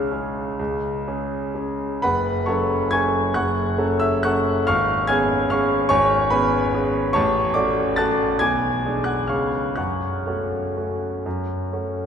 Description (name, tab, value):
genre	classical, piano waltz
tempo	117-154 BPM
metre	3/4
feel	rubato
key	F# minor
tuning	A4 = 440 Hz
part	clear concert grand piano	solo	0.0-12.1 s	F#1 to A6	-19 LUFS	equal	none
room	wet cathedral reverb, RT60 5.7 s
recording	recorded in a church or concert hall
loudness	-19 LUFS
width	side -7 dB against mid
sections	0.0-12.1 A section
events	none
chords	0.0 C#; 2.0 F#m; 4.7 C#7/G#; 7.1 F#m/A; 8.4 G#dim/B; 9.3 C#7; 9.8 F#m